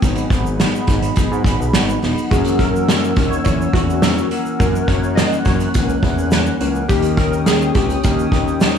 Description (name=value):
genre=indie pop, bedroom pop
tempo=105 BPM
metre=4/4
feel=straight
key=unclear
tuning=A4 = 440 Hz
part: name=mellow electric guitar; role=accompaniment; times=0.0-8.8 s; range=F#2 to G4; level=-21 LUFS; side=left 4 dB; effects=analog chorus, warbly pitch drift
part: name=hollow soft pad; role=sustained chords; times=0.0-8.8 s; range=G#4 to F#6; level=-27 LUFS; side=left 1 dB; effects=chorus
part: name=fat analog bass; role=bass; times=0.0-8.8 s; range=E1 to G#2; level=-20 LUFS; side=right 1 dB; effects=none
part: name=unplugged drum kit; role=drums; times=0.0-8.7 s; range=hi-hat, kick drum, snare drum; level=-18 LUFS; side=right 1 dB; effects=none
part: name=tube shaker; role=percussion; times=0.0-8.8 s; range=none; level=-39 LUFS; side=right 6 dB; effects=none
part: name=warm analog keys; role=melody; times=2.3-8.8 s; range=F#4 to D#5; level=-23 LUFS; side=equal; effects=ensemble chorus, analog delay
room=moderate studio reverb, RT60 0.5 s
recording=studio ambience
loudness=-14 LUFS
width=side -7 dB against mid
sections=0.0-8.8 A section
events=none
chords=0.0 G#m7; 2.3 F#7; 6.9 D#7